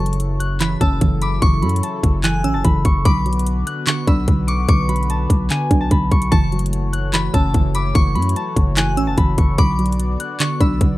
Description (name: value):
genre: hip hop, trap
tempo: 147 BPM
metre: 4/4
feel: half-time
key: F# minor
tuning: A4 = 440 Hz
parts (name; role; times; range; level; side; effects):
- concert harp; melody; 0.0-11.0 s; A4 to F#6; -25 LUFS; left 1 dB; slapback echo
- glassy synth bell; second line; 0.0-11.0 s; A5 to F#6; -28 LUFS; left 4 dB; chorus, slapback echo
- soft round pluck; accompaniment; 0.0-11.0 s; D3 to D4; -24 LUFS; right 4 dB; chorus
- warm analog pad; sustained chords; 0.0-11.0 s; C#3 to D5; -29 LUFS; left 2 dB; chorus
- growling 808-style bass; bass; 0.0-11.0 s; F#1 to F#2; -19 LUFS; equal; none
- trap drum kit; drums; 0.1-10.9 s; handclaps, hi-hat, kick drum; -17 LUFS; equal; none
room: little or no reverb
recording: dark, warm production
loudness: -15 LUFS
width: side -17 dB against mid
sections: 0.0-11.0 A section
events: none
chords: 0.0 F#m7; 3.1 Bm; 6.3 F#m7; 9.6 Bm